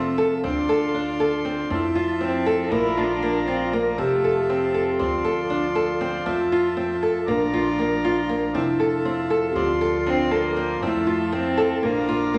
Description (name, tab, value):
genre	contemporary instrumental, chamber music in an uneven meter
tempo	237 BPM (eighths)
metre	9/8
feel	straight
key	F major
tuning	A4 = 442 Hz
part	rich cello	melody	0.0-5.5, 10.1-12.4 s	A3 to E4	-30 LUFS	equal	none
part	vibraphone with soft mallets	second line	0.0-12.4 s	C4 to G4	-27 LUFS	equal	none
part	hand-pumped harmonium	sustained chords	0.0-12.4 s	F3 to C6	-31 LUFS	equal	none
part	nylon-string guitar	arpeggios	0.0-12.4 s	Bb3 to A4	-27 LUFS	equal	none
part	upright bass	bass	0.0-12.4 s	F1 to F2	-37 LUFS	equal	none
part	celesta	texture	2.5-10.6 s	C4 to A4	-37 LUFS	equal	none
room	wet recital hall reverb, RT60 1.3 s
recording	none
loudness	-23 LUFS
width	mono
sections	0.0-12.4 A section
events	none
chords	0.4 Dm7; 1.7 Fmaj7; 2.7 Bb; 4.0 Fmaj7; 5.0 Dm7; 6.3 Fmaj7; 7.3 Bb; 8.5 Fmaj7; 9.6 Dm7; 10.8 Fmaj7; 11.8 Bb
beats	0.18 0.43 0.69 0.94 1.19 1.45 | 1.70 1.95 2.21 2.46 2.71 2.96 3.22 3.47 3.72 | 3.98 4.23 4.48 4.74 4.99 5.24 5.50 5.75 6.00 | 6.26 6.51 6.76 7.02 7.27 7.52 7.78 8.03 8.28 | 8.54 8.79 9.04 9.30 9.55 9.80 10.06 10.31 10.56 | 10.82 11.07 11.32 11.58 11.83 12.08 12.34